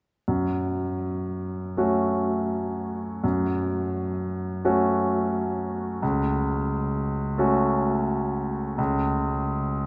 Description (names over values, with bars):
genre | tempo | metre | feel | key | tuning
classical | 40-45 BPM (dotted quarters) | 6/8 | rubato | F# minor | A4 = 440 Hz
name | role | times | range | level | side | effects
bright concert grand piano | accompaniment | 0.3-9.9 s | C#2 to F#4 | -26 LUFS | equal | none
room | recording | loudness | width
wet cathedral reverb, RT60 6.5 s | in a vast, echoing space, nothing above 7.8 kHz | -26 LUFS | mono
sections
0.3-9.9 A section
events
none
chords
0.3 F#m; 6.0 F#m/C#; 8.8 N.C.